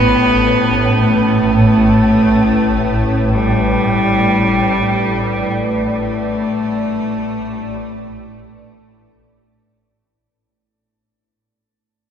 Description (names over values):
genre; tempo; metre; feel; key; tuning
dark ambient drone; free time; none; none; unclear; A4 = 440 Hz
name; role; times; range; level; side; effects
rich cello; melody; 0.0-9.1 s; G3 to B3; -15 LUFS; equal; shimmer reverb, tape echo
deep dark ambient pad; sustained chords; 0.0-10.2 s; A3 to D5; -21 LUFS; equal; chorus, built-in reverb, shimmer reverb
swarming drone; drone; 0.0-10.4 s; A1 to A2; -18 LUFS; equal; built-in reverb
bronze singing bowl; texture; 0.0-10.3 s; none; barely audible; none; none
room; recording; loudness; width
wet huge ambient reverb, RT60 8.2 s; cassette tape; -12 LUFS; side -8 dB against mid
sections
0.0-10.2 A section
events
fade-out 4.1-10.2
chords
0.0 A5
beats
free time